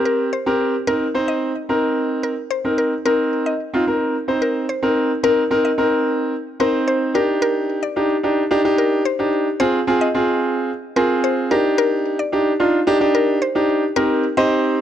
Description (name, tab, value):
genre	pop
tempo	110 BPM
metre	4/4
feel	straight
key	C minor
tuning	A4 = 443 Hz
part	clear concert grand piano	accompaniment	0.0-14.8 s	C4 to C5	-17 LUFS	equal	none
part	mallet-like synth pluck	melody	0.1-14.8 s	Bb4 to Eb5	-23 LUFS	left 3 dB	chorus, tape echo
room	light reverb, small room ambience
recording	dry, gritty hardware recording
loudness	-16 LUFS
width	side -10 dB against mid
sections	0.0-5.2 A section; 5.2-14.0 B section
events	build-up 5.2-14.0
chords	0.0 Abmaj7 (rootless); 0.9 Cm7; 7.1 Ebmaj7; 9.6 Ab6; 11.5 Ebmaj7; 14.0 Cm7